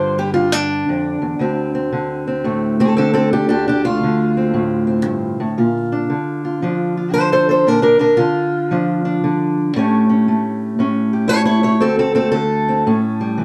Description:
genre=acoustic country blues, solo or duo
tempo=115 BPM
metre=4/4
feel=swing 65% on 8ths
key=D minor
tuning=A4 = 440 Hz
part: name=fingerpicked steel-string acoustic guitar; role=solo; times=0.0-13.4 s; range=D2 to C#5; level=-17 LUFS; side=equal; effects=none
room=wet studio reverb, RT60 0.7 s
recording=dark, warm production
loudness=-17 LUFS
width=mono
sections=0.0-13.4 A section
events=steel-string acoustic guitar solo 0.0-13.4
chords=0.0 G5; 1.4 Dm7; 5.6 Bbmaj7; 9.8 A7; 11.8 D5; 12.9 A7

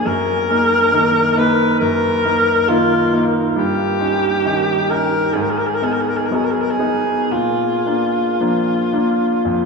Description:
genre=classical, romantic duo for alto saxophone and grand piano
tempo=55-70 BPM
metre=4/4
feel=rubato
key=unclear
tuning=A4 = 441 Hz
part: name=clear alto saxophone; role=melody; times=0.0-9.7 s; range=F4 to Cb5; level=-16 LUFS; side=left 1 dB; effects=none
part: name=bright concert grand piano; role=accompaniment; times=0.0-9.7 s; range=F2 to Eb4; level=-19 LUFS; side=equal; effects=none
room=wet cathedral reverb, RT60 6.3 s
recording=in a vast, echoing space, small room ambience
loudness=-14 LUFS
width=side -4 dB against mid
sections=0.0-9.7 A section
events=none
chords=0.1 Ebm/Gb; 3.6 Eb7/G; 5.4 Abm7; 7.3 Bb

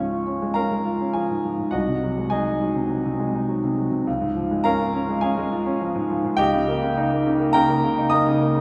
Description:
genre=classical, virtuoso piano study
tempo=103 BPM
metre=4/4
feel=rubato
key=Db major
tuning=A4 = 437 Hz
part: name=clear grand piano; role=solo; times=0.0-8.6 s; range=C2 to Eb6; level=-22 LUFS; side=equal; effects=none
room=wet recital hall reverb, RT60 1.4 s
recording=recorded in a church or concert hall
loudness=-22 LUFS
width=mono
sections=0.0-8.6 A section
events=none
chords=0.0 Db; 1.7 Ab7/C; 4.1 Db; 6.4 Eb7/Db

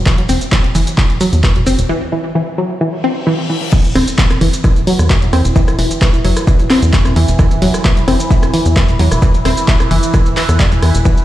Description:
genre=driving peak-time techno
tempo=131 BPM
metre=4/4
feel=straight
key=unclear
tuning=A4 = 440 Hz
part: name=tight sequencer bass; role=bass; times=0.0-11.0 s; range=E1 to E2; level=-13 LUFS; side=equal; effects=sidechain pumping
part: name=wide unison pluck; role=riff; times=0.1-11.1 s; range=E3 to C4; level=-16 LUFS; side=equal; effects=sidechain pumping, tape echo
part: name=electronic kick drum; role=drums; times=0.1-11.2 s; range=none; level=-12 LUFS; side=equal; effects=none
part: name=punchy analog drum machine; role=drums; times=0.1-11.2 s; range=crash cymbal, handclaps, hi-hat, rim click, shaker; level=-20 LUFS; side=equal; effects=none
part: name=reverse cymbal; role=sound effects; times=3.0-3.7 s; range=none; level=-27 LUFS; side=left 4 dB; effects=none
part: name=overtone-sweeping drone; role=drone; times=4.5-11.2 s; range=E3 to E4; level=-21 LUFS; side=right 1 dB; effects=chorus, built-in reverb, phaser, sidechain pumping
room=light reverb, digital ambience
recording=played on a big sound system in a bare room, stone room reverb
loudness=-10 LUFS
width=side -14 dB against mid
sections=0.0-3.7 A section; 3.7-11.2 B section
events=break 1.9-3.7; reverse cymbal 3.0-3.7; drop 3.7-11.2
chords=0.0 Esus2

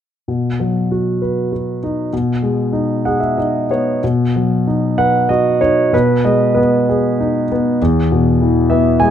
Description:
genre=classical, lyrical solo piano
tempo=96 BPM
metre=3/4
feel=uneven beats, rubato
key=B major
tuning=A4 = 435 Hz
part: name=warm concert grand piano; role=solo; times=0.3-9.1 s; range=E2 to G#5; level=-13 LUFS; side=equal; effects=none
room=light reverb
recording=close, detailed microphones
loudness=-13 LUFS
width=side -9 dB against mid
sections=0.3-4.0 A section; 4.0-9.1 B section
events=grand piano fill 2.7-4.0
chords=0.3 B; 2.1 G#m/B; 4.0 B; 5.9 G#m/B; 7.8 E

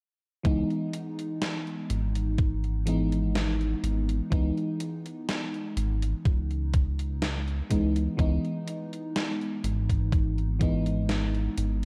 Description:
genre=vaporwave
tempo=62 BPM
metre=4/4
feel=straight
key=unclear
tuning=A4 = 441 Hz
part: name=FM electric piano with soft pad layer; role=accompaniment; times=0.4-11.8 s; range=E3 to D#4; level=-33 LUFS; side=equal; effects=subtle chorus, cassette tape, tape echo
part: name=chorused synth bass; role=bass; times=0.4-11.8 s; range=G#1 to C#2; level=-30 LUFS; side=equal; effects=none
part: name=electronic kick drum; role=drums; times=0.4-10.8 s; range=none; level=-28 LUFS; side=equal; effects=overdrive, small room ambience
part: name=gated 80s digital drum machine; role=drums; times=0.5-11.8 s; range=hi-hat, snare drum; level=-37 LUFS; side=equal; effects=gated reverb, gated reverb snare, small room ambience
room=light reverb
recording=dark, warm production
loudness=-28 LUFS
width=mono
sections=0.4-8.2 A section; 8.2-11.8 B section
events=none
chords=0.4 C#m9; 8.2 C#m9 (rootless)

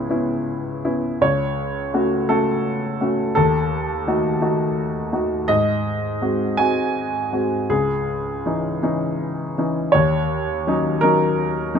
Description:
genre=classical, lyrical solo piano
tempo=55 BPM (dotted quarters)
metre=6/8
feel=rubato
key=C# minor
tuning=A4 = 441 Hz
part: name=warm upright piano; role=solo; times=0.0-11.8 s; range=C#2 to G#5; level=-18 LUFS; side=equal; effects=none
room=light reverb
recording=close, detailed microphones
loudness=-18 LUFS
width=side -7 dB against mid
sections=0.0-11.8 A section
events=none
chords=0.0 C#m7; 1.2 F#m/C#; 3.4 D#dim; 5.5 G#7; 7.7 C#madd9; 9.9 D#m7

